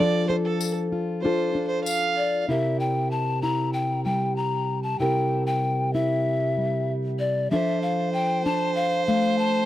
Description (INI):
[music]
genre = acoustic folk duo or small band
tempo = 96 BPM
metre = 4/4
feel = straight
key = C mixolydian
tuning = A4 = 439 Hz
[part]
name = rich fiddle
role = second line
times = 0.0-2.4, 7.5-9.7 s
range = A4 to F5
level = -26 LUFS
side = right 4 dB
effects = none
[part]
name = fingerpicked plugged-in steel-string acoustic guitar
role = accompaniment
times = 0.0-9.7 s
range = C3 to Bb4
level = -25 LUFS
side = left 1 dB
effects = none
[part]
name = tambourine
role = percussion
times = 0.6-2.0 s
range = none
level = -32 LUFS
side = left 7 dB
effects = none
[part]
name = breathy mellow pan flute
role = melody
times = 2.2-9.7 s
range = D5 to Bb5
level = -26 LUFS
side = left 2 dB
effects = tape echo
[sound]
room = moderate booth ambience, RT60 0.2 s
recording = dry, close 1970s-style studio recording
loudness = -22 LUFS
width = side -13 dB against mid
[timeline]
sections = 0.0-2.5 A section; 2.5-9.7 B section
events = fiddle solo 0.0-2.5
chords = 0.0 F6; 2.5 C7; 7.5 F6